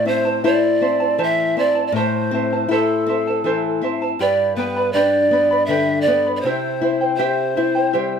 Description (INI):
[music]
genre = andean folk, Andean ensemble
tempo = 80 BPM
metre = 3/4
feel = straight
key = A minor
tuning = A4 = 440 Hz
[part]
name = breathy pan flute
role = melody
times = 0.0-8.2 s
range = A4 to E5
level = -19 LUFS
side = right 3 dB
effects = slapback echo
[part]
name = charango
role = accompaniment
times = 0.0-8.2 s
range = E4 to B5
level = -22 LUFS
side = right 1 dB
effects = none
[part]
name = nylon-string guitar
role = accompaniment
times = 0.0-8.2 s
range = G2 to G4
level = -22 LUFS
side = left 6 dB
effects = none
[sound]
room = moderate studio reverb, RT60 0.7 s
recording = none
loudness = -16 LUFS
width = side -7 dB against mid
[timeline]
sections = 0.0-4.2 A section; 4.2-8.2 A section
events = none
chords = 0.0 Am; 4.2 G; 6.4 C